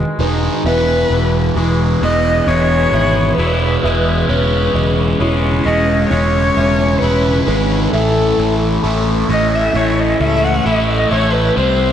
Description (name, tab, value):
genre	rock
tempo	66 BPM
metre	4/4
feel	straight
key	E major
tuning	A4 = 439 Hz
part	hollow soft pad	sustained chords	0.0-11.9 s	C3 to G#5	-28 LUFS	left 4 dB	none
part	felt-muted upright piano	arpeggios	0.0-11.9 s	E4 to E5	-28 LUFS	right 2 dB	tape echo
part	twangy electric guitar	arpeggios	0.0-11.9 s	E2 to E4	-25 LUFS	left 2 dB	lush chorus, slapback echo, tape echo
part	overdriven electric guitar	riff	0.0-11.9 s	E2 to C#4	-17 LUFS	right 1 dB	phaser, slapback echo
part	fuzz picked electric bass	bass	0.0-11.9 s	E1 to C#2	-18 LUFS	equal	overdrive
part	warm cello	melody	0.7-11.9 s	A4 to F#5	-18 LUFS	left 1 dB	slapback echo, tape echo
room	moderate lush hall reverb, RT60 2.3 s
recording	big arena sound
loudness	-12 LUFS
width	side -9 dB against mid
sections	0.7-11.9 A section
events	none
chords	0.0 G#m7/E; 0.7 E; 4.3 C#m7/E; 7.9 A